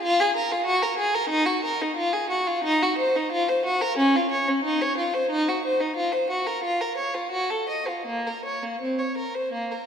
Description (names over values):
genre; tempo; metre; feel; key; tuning
classical, baroque-style suite movement for unaccompanied violin; 89 BPM; 4/4; uneven beats, rubato; Bb minor; A4 = 438 Hz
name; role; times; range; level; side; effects
rich violin; solo; 0.0-9.9 s; Bb3 to Eb5; -22 LUFS; equal; none
room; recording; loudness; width
wet church reverb, RT60 2.7 s; none; -22 LUFS; side -7 dB against mid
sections
0.0-9.9 A section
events
none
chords
none